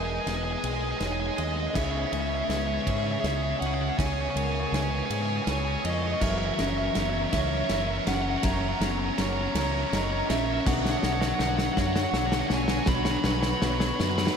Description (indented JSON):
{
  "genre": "post-rock",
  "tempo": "54 BPM (dotted quarters)",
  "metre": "6/8",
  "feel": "straight",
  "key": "unclear",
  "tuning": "A4 = 441 Hz",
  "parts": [
    { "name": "overdriven semi-hollow guitar", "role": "melody", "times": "0.0-14.4 s", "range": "D#5 to B5", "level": "-32 LUFS", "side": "equal", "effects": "ping-pong delay" },
    { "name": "pedal steel guitar", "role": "sustained chords", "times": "0.0-14.4 s", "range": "C#3 to A#4", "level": "-37 LUFS", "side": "left 1 dB", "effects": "none" },
    { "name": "electric guitar through a small old amp", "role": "arpeggios", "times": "0.0-14.4 s", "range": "B2 to A#4", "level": "-34 LUFS", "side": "left 2 dB", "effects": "wide subtle chorus, ping-pong delay" },
    { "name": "vibraphone with soft mallets", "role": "arpeggios", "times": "0.0-14.4 s", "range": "B3 to D#6", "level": "-37 LUFS", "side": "right 2 dB", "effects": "ping-pong delay" },
    { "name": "sludgy distorted guitar", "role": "riff", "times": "0.0-14.4 s", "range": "F#4 to D#5", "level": "-32 LUFS", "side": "right 1 dB", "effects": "overdrive" },
    { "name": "growling fingered electric bass", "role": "bass", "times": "0.0-14.3 s", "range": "E1 to G#2", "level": "-31 LUFS", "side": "equal", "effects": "overdrive" },
    { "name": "loose indie drum kit", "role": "drums", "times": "0.3-14.4 s", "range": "crash cymbal, kick drum, ride cymbal, snare drum", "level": "-31 LUFS", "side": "equal", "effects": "none" }
  ],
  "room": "wet cathedral reverb, RT60 7.6 s",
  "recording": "dreamy mix soaked in reverb",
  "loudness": "-24 LUFS",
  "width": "side -6 dB against mid",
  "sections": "0.0-14.4 A section",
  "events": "build-up 0.0-14.4; drum fill 0.0-14.4",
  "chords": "0.0 Emaj7; 1.8 C#m7; 6.2 F#7; 10.7 Bmadd9"
}